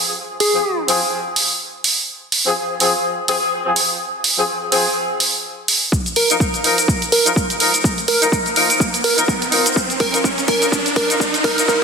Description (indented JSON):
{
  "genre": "bass house",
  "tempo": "125 BPM",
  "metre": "4/4",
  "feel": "swing 57% on 16ths",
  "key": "F minor",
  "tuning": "A4 = 441 Hz",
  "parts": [
    { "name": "plucky unison lead", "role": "melody", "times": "0.4-0.8, 6.2-11.8 s", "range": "Ab4 to Bb4", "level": "-20 LUFS", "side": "right 1 dB", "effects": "dub echo" },
    { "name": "electronic hi-hat and shaker", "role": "drums", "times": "0.4-11.8 s", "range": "none", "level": "-18 LUFS", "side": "right 2 dB", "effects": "overdrive" },
    { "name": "dark horn section", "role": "stabs", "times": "0.5-11.8 s", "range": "F3 to Bb4", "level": "-20 LUFS", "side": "left 2 dB", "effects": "sidechain pumping, dub echo" },
    { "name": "electronic kick drum", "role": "drums", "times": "5.9-11.8 s", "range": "none", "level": "-20 LUFS", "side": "equal", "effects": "overdrive" },
    { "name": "riser", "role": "sound effects", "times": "8.0-11.8 s", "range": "none", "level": "-24 LUFS", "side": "right 2 dB", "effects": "none" }
  ],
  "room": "wet lush hall reverb, RT60 1.7 s, digital ambience",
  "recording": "dense, heavily limited modern master, high-pass filter",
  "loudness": "-14 LUFS",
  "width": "side -5 dB against mid",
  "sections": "0.0-11.8 A section",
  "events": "build-up 0.0-11.8; drum fill 5.9-11.8; riser 8.0-11.8",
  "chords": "0.0 Fm; 5.9 Ebsus2"
}